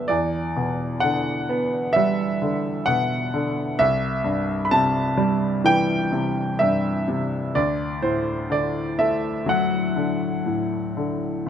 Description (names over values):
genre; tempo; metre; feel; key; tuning
classical, lyrical solo piano; 64 BPM; 4/4; rubato; unclear; A4 = 440 Hz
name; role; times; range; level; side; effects
clear grand piano; solo; 0.0-11.5 s; C2 to B5; -20 LUFS; equal; none
room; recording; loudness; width
light reverb; close, detailed microphones; -20 LUFS; side -9 dB against mid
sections
0.0-11.5 A section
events
none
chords
0.1 Em7; 3.8 C; 7.5 D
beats
| 0.10 1.03 1.96 2.88 | 3.80 4.72 5.66 6.60 | 7.55 8.51 9.48 10.47 | 11.47